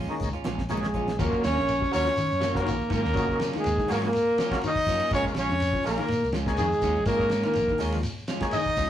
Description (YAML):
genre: afrobeat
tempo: 123 BPM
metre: 4/4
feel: swing 55% on 16ths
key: Eb minor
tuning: A4 = 440 Hz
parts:
  - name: electric guitar through a small old amp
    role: arpeggios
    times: 0.0-8.9 s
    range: Db3 to Ab3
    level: -36 LUFS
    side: left 6 dB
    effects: none
  - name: electric guitar at the edge of break-up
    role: stabs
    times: 0.0-8.9 s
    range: Gb3 to F4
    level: -35 LUFS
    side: right 4 dB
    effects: none
  - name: fingered electric bass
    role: bass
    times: 0.0-8.9 s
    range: Bb1 to Eb3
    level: -31 LUFS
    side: equal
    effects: none
  - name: overdriven tonewheel organ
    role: accompaniment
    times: 0.1-8.6 s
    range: Gb3 to Ab4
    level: -32 LUFS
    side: left 1 dB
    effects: slow rotary speaker, chorus vibrato
  - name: cloth-damped thuddy drum kit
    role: drums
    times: 0.2-8.9 s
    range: hi-hat, kick drum, ride cymbal, snare drum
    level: -34 LUFS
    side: equal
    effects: none
  - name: shekere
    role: percussion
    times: 0.2-8.9 s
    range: none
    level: -38 LUFS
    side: left 1 dB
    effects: none
  - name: congas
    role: percussion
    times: 0.5-1.2 s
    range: none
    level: -37 LUFS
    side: right 4 dB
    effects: none
  - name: warm trumpet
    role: melody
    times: 0.7-8.9 s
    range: Ab4 to Eb5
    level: -28 LUFS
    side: left 1 dB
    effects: none
  - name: breathy alto saxophone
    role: second line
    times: 0.7-8.9 s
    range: Ab3 to Eb4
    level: -29 LUFS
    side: right 2 dB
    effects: none
room: wet studio reverb, RT60 0.5 s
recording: rough rehearsal-room recording, tube saturation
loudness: -23 LUFS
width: side -11 dB against mid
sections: 0.0-1.2 A section; 1.2-8.9 B section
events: drum fill 0.7-1.2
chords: 0.0 Bbm7; 1.2 Ebm9; 5.1 Bbm7